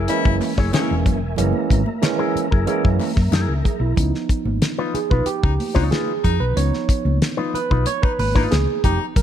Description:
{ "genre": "funk", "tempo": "92 BPM", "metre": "4/4", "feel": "straight", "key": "unclear", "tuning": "A4 = 440 Hz", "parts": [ { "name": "electric guitar with an envelope filter", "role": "accompaniment", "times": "0.0-8.6 s", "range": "Eb4 to Db5", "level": "-27 LUFS", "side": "left 6 dB", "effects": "none" }, { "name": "mellow tonewheel organ", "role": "sustained chords", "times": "0.0-4.0 s", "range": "Bb4 to Bb5", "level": "-33 LUFS", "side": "left 1 dB", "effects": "slow rotary speaker, chorus vibrato" }, { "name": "hollow-body short-scale fingered electric bass", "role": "bass", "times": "0.0-9.2 s", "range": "Fb1 to Gb2", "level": "-21 LUFS", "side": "left 1 dB", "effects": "none" }, { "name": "clear baritone saxophone", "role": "second line", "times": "0.1-1.0, 5.4-9.1 s", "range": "Db4 to Fb4", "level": "-28 LUFS", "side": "left 8 dB", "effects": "none" }, { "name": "barky tine electric piano", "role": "stabs", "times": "0.1-9.2 s", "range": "Fb3 to Db5", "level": "-23 LUFS", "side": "right 6 dB", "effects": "overdrive" }, { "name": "damped 70s drum kit", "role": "drums", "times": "0.1-9.2 s", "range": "hi-hat, kick drum, snare drum", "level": "-21 LUFS", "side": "left 1 dB", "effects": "none" }, { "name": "congas", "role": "percussion", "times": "0.2-9.2 s", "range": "none", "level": "-30 LUFS", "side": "right 3 dB", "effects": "none" }, { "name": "group handclap", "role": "percussion", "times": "0.4-3.5 s", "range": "none", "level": "-40 LUFS", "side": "left 5 dB", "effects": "none" } ], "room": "light reverb", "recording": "dark, warm production", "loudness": "-17 LUFS", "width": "side -10 dB against mid", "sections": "0.0-4.0 A section; 4.0-9.2 B section", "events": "tine electric piano solo 4.0-9.2", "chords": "0.0 Gb9; 4.0 Db9" }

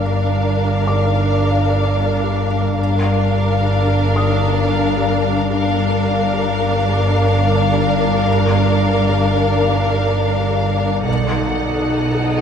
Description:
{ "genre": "cinematic", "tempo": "109 BPM", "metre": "5/4", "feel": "straight", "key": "G minor", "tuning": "A4 = 439 Hz", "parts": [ { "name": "felt-muted upright piano", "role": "texture", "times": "0.0-8.3 s", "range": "D6 to F6", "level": "-32 LUFS", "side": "left 1 dB", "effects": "none" }, { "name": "rich studio violin section", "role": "melody", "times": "0.1-12.4 s", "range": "F5 to F#5", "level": "-24 LUFS", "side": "left 4 dB", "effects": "none" }, { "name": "warm studio violin section", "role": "second line", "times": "0.1-12.4 s", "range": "A4 to Bb4", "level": "-25 LUFS", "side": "left 1 dB", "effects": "none" }, { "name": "rich studio viola section", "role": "accompaniment", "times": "0.1-12.4 s", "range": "D4 to D#4", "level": "-23 LUFS", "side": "right 1 dB", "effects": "none" }, { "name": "flickering grainy texture", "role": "sustained chords", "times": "0.1-12.4 s", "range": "D4 to F#5", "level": "-23 LUFS", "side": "left 1 dB", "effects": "built-in reverb" }, { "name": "marimba with medium mallets", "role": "riff", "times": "0.1-12.4 s", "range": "G2 to B3", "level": "-21 LUFS", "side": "left 4 dB", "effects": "none" }, { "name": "rich studio double bass section", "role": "bass", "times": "0.1-12.4 s", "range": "G1 to B1", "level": "-24 LUFS", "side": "right 5 dB", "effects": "none" }, { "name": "warm studio cello section", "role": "bass", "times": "0.1-12.4 s", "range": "G2 to B2", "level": "-22 LUFS", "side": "right 3 dB", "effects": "none" }, { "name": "metallic inharmonic drone", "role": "drone", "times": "0.1-12.4 s", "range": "G1 to B1", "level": "-28 LUFS", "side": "equal", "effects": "chorus, built-in reverb" }, { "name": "cymbal swell", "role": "sound effects", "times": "12.1-12.4 s", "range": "none", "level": "-32 LUFS", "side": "right 1 dB", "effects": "none" } ], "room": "wet scoring stage reverb, RT60 1.9 s", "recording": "minimal, uncompressed stereo recording", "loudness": "-14 LUFS", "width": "side -7 dB against mid", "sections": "0.0-12.4 A section", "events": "none", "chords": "0.0 Bb/G; 11.1 B7" }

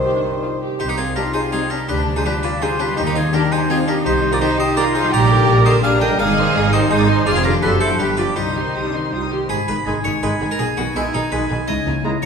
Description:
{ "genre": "cinematic, playful, whimsical film cue", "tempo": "166 BPM", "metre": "3/4", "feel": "straight", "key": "C minor", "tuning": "A4 = 440 Hz", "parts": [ { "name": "concert flute", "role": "second line", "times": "0.0-0.6, 9.9-12.1 s", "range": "G#5 to C6", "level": "-35 LUFS", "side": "left 2 dB", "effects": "none" }, { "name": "warm clarinet", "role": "second line", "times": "0.0-0.6, 9.9-12.2 s", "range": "D#4 to C5", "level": "-30 LUFS", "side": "left 6 dB", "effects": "none" }, { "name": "warm studio violin section", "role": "second line", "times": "0.0-12.3 s", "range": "Bb3 to C5", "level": "-25 LUFS", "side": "left 1 dB", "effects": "none" }, { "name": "mellow bassoon", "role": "accompaniment", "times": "0.0-0.6, 9.9-12.2 s", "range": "Eb3 to G#3", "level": "-28 LUFS", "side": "right 2 dB", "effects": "none" }, { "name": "rich studio viola section", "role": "accompaniment", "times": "0.0-12.3 s", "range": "D3 to C5", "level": "-26 LUFS", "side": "right 1 dB", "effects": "none" }, { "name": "warm French horn section", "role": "sustained chords", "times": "0.0-0.6, 9.9-12.2 s", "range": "G3 to E4", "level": "-33 LUFS", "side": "equal", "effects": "none" }, { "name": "concert harp", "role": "arpeggios", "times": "0.0-12.3 s", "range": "F2 to Ab5", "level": "-24 LUFS", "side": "left 3 dB", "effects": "none" }, { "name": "warm studio violin section", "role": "melody", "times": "0.1-12.3 s", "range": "Eb5 to F6", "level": "-31 LUFS", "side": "left 4 dB", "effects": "none" }, { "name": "harpsichord", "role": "melody", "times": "0.8-12.3 s", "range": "Eb4 to Eb5", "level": "-24 LUFS", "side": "equal", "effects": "none" }, { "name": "clear oboe", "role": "second line", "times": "0.8-12.3 s", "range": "G4 to B5", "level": "-23 LUFS", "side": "right 2 dB", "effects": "none" }, { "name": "rich symphonic double bass section", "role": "bass", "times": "0.8-12.3 s", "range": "F1 to Eb2", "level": "-22 LUFS", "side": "right 3 dB", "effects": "none" }, { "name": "rich studio cello section", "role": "bass", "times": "1.2-12.3 s", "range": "G#2 to Bb4", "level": "-25 LUFS", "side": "equal", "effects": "none" } ], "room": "wet scoring stage reverb, RT60 1.9 s", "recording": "minimal, uncompressed stereo recording", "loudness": "-15 LUFS", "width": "side -6 dB against mid", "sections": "0.8-9.5 A section; 9.5-12.3 B section", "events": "none", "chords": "0.0 Cm; 1.9 G5/D; 3.0 Ebmaj13; 4.0 Cm; 5.1 Gm/Bb; 6.2 Ab; 7.3 Ddim/F; 7.6 D7/F#; 8.0 G7; 8.4 Cm; 9.5 G#m; 10.6 G#m/B; 11.7 A#m7b5/C#" }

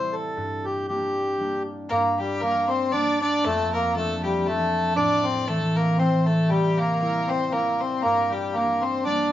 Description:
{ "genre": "celtic folk, Celtic waltz", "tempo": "117 BPM", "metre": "3/4", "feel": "swing 54% on 8ths", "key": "G dorian", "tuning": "A4 = 440 Hz", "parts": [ { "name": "accordion", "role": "melody", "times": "0.0-9.3 s", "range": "G3 to C5", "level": "-23 LUFS", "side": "left 1 dB", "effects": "none" }, { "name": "concert harp", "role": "accompaniment", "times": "0.0-9.3 s", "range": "F2 to E4", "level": "-27 LUFS", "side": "equal", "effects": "none" }, { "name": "clear fiddle", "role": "second line", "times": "1.9-9.3 s", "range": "G4 to D5", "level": "-30 LUFS", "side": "left 1 dB", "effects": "none" } ], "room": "wet studio reverb, RT60 0.6 s", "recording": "heard from further back in the room, nothing above 7.6 kHz", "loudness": "-21 LUFS", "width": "side -12 dB against mid", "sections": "0.0-1.9 A section; 1.9-9.3 A section", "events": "none", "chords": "0.4 Gm; 3.4 Dm/F; 5.0 Am; 6.5 C; 8.0 Gm" }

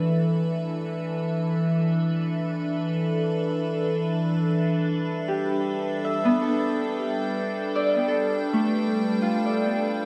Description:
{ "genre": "ambient", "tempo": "53 BPM", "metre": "4/4", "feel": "straight", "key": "unclear", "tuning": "A4 = 440 Hz", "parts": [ { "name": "evolving wavetable pad", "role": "sustained chords", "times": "0.0-10.1 s", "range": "E3 to G5", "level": "-27 LUFS", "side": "equal", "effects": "chorus, built-in reverb, phaser" }, { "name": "Celtic harp", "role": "arpeggios", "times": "5.3-10.1 s", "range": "A3 to E5", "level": "-27 LUFS", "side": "equal", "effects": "delay" } ], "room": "wet lush hall reverb, RT60 2.8 s", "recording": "dreamy mix soaked in reverb", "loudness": "-25 LUFS", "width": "mono", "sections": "0.0-10.1 A section", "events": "none", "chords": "0.0 E7sus4; 4.6 Gadd9" }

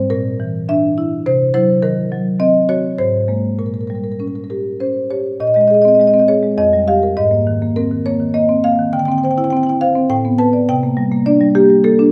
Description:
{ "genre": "classical, contemporary piece for solo marimba", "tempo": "102 BPM", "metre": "3/4", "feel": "rubato", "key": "unclear", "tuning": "A4 = 440 Hz", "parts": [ { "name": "marimba with medium hard mallets", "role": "solo", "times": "0.0-12.1 s", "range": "F2 to A5", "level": "-15 LUFS", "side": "equal", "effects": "none" } ], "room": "moderate recital hall reverb, RT60 1.6 s", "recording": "none", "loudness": "-15 LUFS", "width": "mono", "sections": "0.0-5.4 A section; 5.4-12.1 B section", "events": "none", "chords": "0.1 Bb; 1.3 C; 1.8 Ebm6; 3.0 Abadd9; 3.6 Bbm6; 5.4 Bbsus2; 6.6 F9sus4; 7.2 Abadd9; 8.9 Dsus2; 10.1 A9sus4; 10.7 Csus2" }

